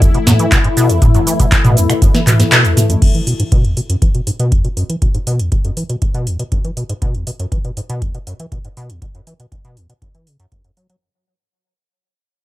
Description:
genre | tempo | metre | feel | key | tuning
acid house | 120 BPM | 4/4 | straight | F# minor | A4 = 440 Hz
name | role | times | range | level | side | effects
warm analog pad | sustained chords | 0.0-3.0 s | E3 to E4 | -19 LUFS | left 3 dB | chorus, sidechain pumping
deep acid bass | riff | 0.0-11.0 s | E2 to F#3 | -17 LUFS | equal | overdrive, sidechain pumping, dub echo
booming analog drum machine | drums | 0.0-11.0 s | crash cymbal, finger snaps, handclaps, hi-hat, shaker, snare drum, toms | -15 LUFS | equal | overdrive
electronic kick drum | drums | 0.0-10.6 s | none | -14 LUFS | equal | none
room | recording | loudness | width
light reverb | none | -12 LUFS | side -15 dB against mid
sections
0.0-3.0 A section; 3.0-11.0 B section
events
drop 0.0-3.0; kick drops out 2.5-3.0; band accent 2.5; fade-out 3.0-11.0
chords
0.0 F#m7 (rootless); 3.0 F#5

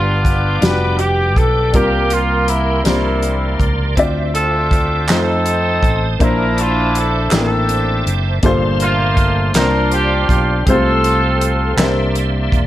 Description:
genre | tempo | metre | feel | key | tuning
slow gospel | 54 BPM (dotted quarters) | 6/8 | straight | unclear | A4 = 441 Hz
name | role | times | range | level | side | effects
warm horn section | melody | 0.0-12.2 s | G3 to B4 | -18 LUFS | equal | none
warm upright piano | accompaniment | 0.0-12.7 s | G2 to E5 | -20 LUFS | left 2 dB | none
bright tonewheel organ | sustained chords | 0.0-12.7 s | Bb3 to Eb6 | -24 LUFS | right 1 dB | fast rotary speaker, chorus vibrato
fingered electric bass | bass | 0.0-12.7 s | E1 to F2 | -18 LUFS | equal | none
warm soul drum kit | drums | 0.2-12.7 s | hi-hat, kick drum, snare drum | -18 LUFS | equal | none
group handclap | percussion | 5.1-12.1 s | none | -22 LUFS | right 3 dB | none
room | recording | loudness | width
light reverb, small room ambience | none | -13 LUFS | side -14 dB against mid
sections
0.0-12.7 A section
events
none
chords
0.0 G7; 1.7 C7sus4; 2.9 C9sus4; 4.0 Dm9; 5.1 F7; 6.2 Bbmaj9#11; 8.4 Gm11; 9.5 C9sus4; 10.7 F/C; 11.8 C9

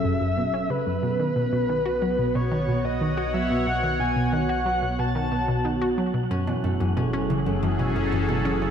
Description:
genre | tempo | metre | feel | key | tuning
ambient | 91 BPM | 4/4 | straight | unclear | A4 = 439 Hz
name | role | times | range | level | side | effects
breathy flute-like synth lead | melody | 0.0-5.6 s | B4 to A5 | -28 LUFS | left 1 dB | lush chorus, cassette tape, analog delay
sweeping resonant pad | sustained chords | 0.0-8.7 s | F#3 to F#5 | -28 LUFS | right 2 dB | chorus
analog pluck | riff | 0.0-8.7 s | F#2 to F#4 | -26 LUFS | equal | chorus, cassette tape, analog delay
round analog bass | bass | 0.0-8.7 s | F#1 to B1 | -34 LUFS | equal | tube saturation
wind-like tuned noise texture | texture | 0.9-8.7 s | F#4 to F#5 | -39 LUFS | left 1 dB | built-in reverb
concert harp | arpeggios | 6.3-8.7 s | E3 to C#4 | -30 LUFS | left 5 dB | auto-pan, analog delay
room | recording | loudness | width
moderate plate reverb, RT60 3.4 s | none | -22 LUFS | side -8 dB against mid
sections
0.0-8.7 A section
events
fade-in on analog synth bass 0.0-8.7; fade-in on synth texture 0.0-8.7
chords
0.0 F#m7; 1.0 B7; 6.3 F#m7

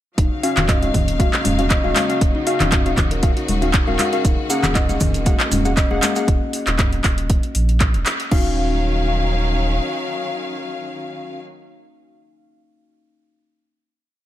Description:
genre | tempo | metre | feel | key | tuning
afro house | 118 BPM | 4/4 | swing 54% on 16ths | Eb minor | A4 = 437 Hz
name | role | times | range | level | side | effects
clear studio string section | sustained chords | 0.2-11.4 s | Db3 to F5 | -27 LUFS | left 2 dB | sidechain pumping
kalimba | arpeggios | 0.2-8.6 s | Bb3 to Eb5 | -26 LUFS | left 1 dB | sidechain pumping, dub echo
warm sub bass | bass | 0.2-9.8 s | Eb1 to Bb1 | -22 LUFS | equal | sidechain pumping
deep house drum kit | drums | 0.2-8.4 s | crash cymbal, handclaps, hi-hat, toms | -22 LUFS | equal | overdrive
electronic kick drum | drums | 0.2-8.4 s | none | -18 LUFS | equal | overdrive
warm analog keys | stabs | 0.4-11.4 s | Bb3 to Gb5 | -24 LUFS | left 2 dB | chorus, sidechain pumping, dub echo
congas | percussion | 0.6-6.1 s | none | -25 LUFS | left 3 dB | none
maracas | percussion | 4.3-6.3 s | none | -28 LUFS | right 4 dB | none
room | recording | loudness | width
little or no reverb | none | -16 LUFS | side -12 dB against mid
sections
0.2-8.3 drop; 8.3-12.4 final chord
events
drop 0.2-8.3; band accent 8.1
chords
0.2 Ebm9; 4.2 Gbadd9/Eb; 8.3 Ebm9

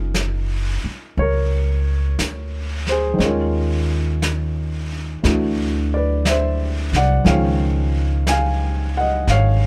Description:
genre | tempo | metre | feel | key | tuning
jazz ballad | 59 BPM | 4/4 | swing 67% on 8ths | unclear | A4 = 440 Hz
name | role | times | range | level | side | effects
warm grand piano | accompaniment | 0.0-9.7 s | Eb3 to Ab5 | -23 LUFS | equal | none
upright bass | bass | 0.0-9.7 s | Gb1 to Eb2 | -22 LUFS | equal | none
vintage brush drum kit | drums | 0.1-9.7 s | brushed snare drum, hi-hat, snare drum | -30 LUFS | equal | none
room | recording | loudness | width
little or no reverb | none | -20 LUFS | mono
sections
0.0-9.7 A section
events
none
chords
0.0 Gb69; 3.2 Ebsus2; 5.2 D7; 7.2 Dbadd9

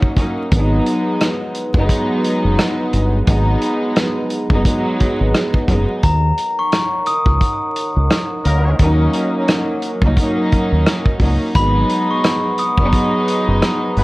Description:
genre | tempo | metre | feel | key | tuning
hip hop, boom-bap hip-hop | 87 BPM | 4/4 | swing 59% on 16ths | Eb minor | A4 = 438 Hz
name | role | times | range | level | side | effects
warm studio string section | accompaniment | 0.0-14.0 s | Gb3 to Eb4 | -18 LUFS | equal | cassette tape, high-pass filter, low-pass filter
dark analog pad | sustained chords | 0.0-14.0 s | Eb4 to Gb5 | -28 LUFS | equal | chorus, phaser, high-pass filter, low-pass filter
warm soul drum kit | drums | 0.0-14.0 s | hi-hat, kick drum, rim click, snare drum | -18 LUFS | equal | none
deep dub fingered electric bass | bass | 0.5-14.0 s | Gb1 to Eb2 | -16 LUFS | equal | none
glockenspiel with brass mallets | melody | 6.0-13.1 s | Bb5 to Eb6 | -20 LUFS | left 1 dB | high-pass filter, low-pass filter, ping-pong delay
mellow horn section | stabs | 8.4-8.7, 14.0 s | Gb3 to Cb5 | -25 LUFS | left 2 dB | high-pass filter, low-pass filter, ping-pong delay
room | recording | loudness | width
light reverb, small room ambience | worn, warbling old tape, cassette tape, vinyl crackle, warbly pitch drift | -14 LUFS | side -21 dB against mid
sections
0.0-6.0 A section; 6.0-14.0 B section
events
break 0.0-3.3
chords
0.0 Ebm7; 0.5 Abm7; 6.0 Ebm7; 11.6 Abm7

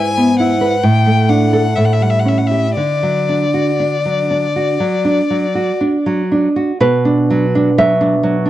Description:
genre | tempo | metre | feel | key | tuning
romantic duo for violin and classical guitar | 57-69 BPM | 4/4 | rubato | D major | A4 = 440 Hz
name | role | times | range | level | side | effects
clear violin | melody | 0.0-5.8 s | D5 to G#5 | -18 LUFS | left 5 dB | tape echo
nylon-string guitar | accompaniment | 0.0-8.5 s | G#2 to E5 | -13 LUFS | right 1 dB | none
room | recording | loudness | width
light reverb | dry, close 1970s-style studio recording | -12 LUFS | side -13 dB against mid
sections
0.0-6.8 A section; 6.8-8.5 B section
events
none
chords
0.0 E/G#; 0.8 D/A; 1.8 A7; 2.8 D; 6.8 Bm

